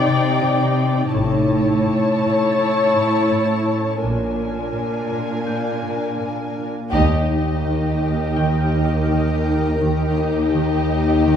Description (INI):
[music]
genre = cinematic, suspense film score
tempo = 83 BPM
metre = 4/4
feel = straight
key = unclear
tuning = A4 = 440 Hz
[part]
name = muted studio violin section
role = melody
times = 0.0-11.4 s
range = D#5 to A5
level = -28 LUFS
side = left 2 dB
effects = none
[part]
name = muted studio viola section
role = accompaniment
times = 0.0-11.4 s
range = D4 to D5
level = -23 LUFS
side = left 1 dB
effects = none
[part]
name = granular cloud pad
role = sustained chords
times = 0.0-11.4 s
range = Eb4 to D6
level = -28 LUFS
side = right 1 dB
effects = built-in reverb
[part]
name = concert harp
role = riff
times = 0.0-11.4 s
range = A2 to D#4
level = -23 LUFS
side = left 3 dB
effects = none
[part]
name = muted studio cello section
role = bass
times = 0.0-11.4 s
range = D#2 to C3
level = -24 LUFS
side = right 3 dB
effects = none
[part]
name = concert harp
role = texture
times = 0.0-11.4 s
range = Eb4 to G6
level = -32 LUFS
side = left 4 dB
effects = none
[part]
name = muted studio double bass section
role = bass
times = 1.1-11.4 s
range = A1 to D#2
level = -23 LUFS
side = right 1 dB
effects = none
[part]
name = muted studio violin section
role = second line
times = 6.9-11.4 s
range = G4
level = -27 LUFS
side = left 2 dB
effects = none
[part]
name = solo taiko drums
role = drums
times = 6.9-8.3 s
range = none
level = -30 LUFS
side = left 1 dB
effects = none
[sound]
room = moderate scoring stage reverb, RT60 2.0 s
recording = small room reverb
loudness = -17 LUFS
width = side -8 dB against mid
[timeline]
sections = 0.0-6.9 A section; 6.9-11.4 B section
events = band accent 6.9-7.6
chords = 0.0 Cmadd9; 1.1 A; 4.0 A#7; 6.9 D#